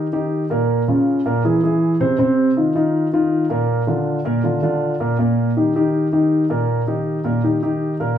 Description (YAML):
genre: jazz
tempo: 160 BPM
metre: 4/4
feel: straight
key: Eb major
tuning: A4 = 440 Hz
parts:
  - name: dark baby grand piano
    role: solo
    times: 0.0-8.2 s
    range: Bb2 to C5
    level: -16 LUFS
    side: equal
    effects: none
room: wet large studio reverb, RT60 0.9 s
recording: band playing live in one room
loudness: -16 LUFS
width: side -9 dB against mid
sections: 0.0-8.2 A section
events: none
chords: 0.0 Eb; 0.7 Bbm; 1.4 Caug; 2.2 F5; 3.7 Bb; 5.2 Eb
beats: 0.32 | 0.69 1.07 1.44 1.82 | 2.19 2.57 2.94 3.32 | 3.69 4.07 4.44 4.81 | 5.19 5.56 5.94 6.31 | 6.69 7.06 7.44 7.81